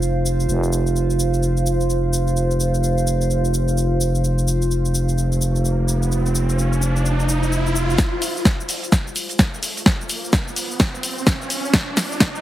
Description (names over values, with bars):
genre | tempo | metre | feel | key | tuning
bass house | 128 BPM | 4/4 | swing 61% on 16ths | unclear | A4 = 439 Hz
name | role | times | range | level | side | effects
growling FM bass | bass | 0.0-8.0 s | F1 | -19 LUFS | equal | tube saturation, sidechain pumping
house drum kit | drums | 0.0-12.4 s | cabasa, hi-hat, snare drum | -22 LUFS | equal | none
warbly tape-like pad | texture | 0.0-12.4 s | F4 to F5 | -26 LUFS | right 2 dB | chorus, built-in reverb, phaser, sidechain pumping
riser | sound effects | 5.5-12.4 s | none | -28 LUFS | equal | none
electronic kick drum | drums | 8.0-12.3 s | none | -18 LUFS | equal | none
open jazz drum kit | drums | 8.0-12.3 s | hi-hat, shaker, snare drum | -33 LUFS | right 1 dB | none
room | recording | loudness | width
small room ambience | heavily compressed radio sound, multiband compression, high-pass filter | -17 LUFS | side -13 dB against mid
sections
0.0-8.0 A section; 8.0-12.4 B section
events
riser 5.5-8.0, 8.0-12.4; build-up 8.0-12.4; drum fill 8.0-12.4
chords
0.0 F5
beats
0.02 | 0.48 0.95 1.42 1.89 | 2.36 2.83 3.30 3.77 | 4.24 4.70 5.17 5.64 | 6.11 6.58 7.05 7.52 | 7.99 8.45 8.92 9.39 | 9.86 10.33 10.80 11.27 | 11.73 12.20